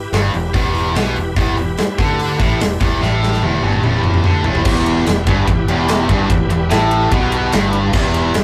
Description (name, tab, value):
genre	classic rock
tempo	146 BPM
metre	4/4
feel	straight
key	E minor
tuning	A4 = 440 Hz
part	bright tonewheel organ	sustained chords	0.0-8.4 s	E4 to B4	-27 LUFS	equal	overdrive, chorus vibrato, fast rotary speaker
part	tight distorted guitar	riff	0.1-8.4 s	E2 to D3	-21 LUFS	equal	distortion
part	growling fingered electric bass	bass	0.1-8.4 s	E1 to D2	-22 LUFS	equal	overdrive
part	big rock drum kit	drums	0.1-8.4 s	crash cymbal, hi-hat, kick drum, ride cymbal, snare drum, toms	-20 LUFS	equal	none
part	cranked stack guitar	riff	4.7-8.4 s	E2 to B2	-22 LUFS	equal	overdrive
room	wet booth ambience, RT60 0.2 s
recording	rough rehearsal-room recording, warm saturation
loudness	-16 LUFS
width	mono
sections	0.0-4.7 A section; 4.7-8.4 B section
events	drum fill 3.0-4.7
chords	0.0 Em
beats	0.14 0.55 0.96 | 1.37 1.78 2.19 2.61 | 3.02 3.43 3.84 4.25 | 4.66 5.07 5.48 5.89 | 6.30 6.71 7.12 7.53 | 7.94 8.35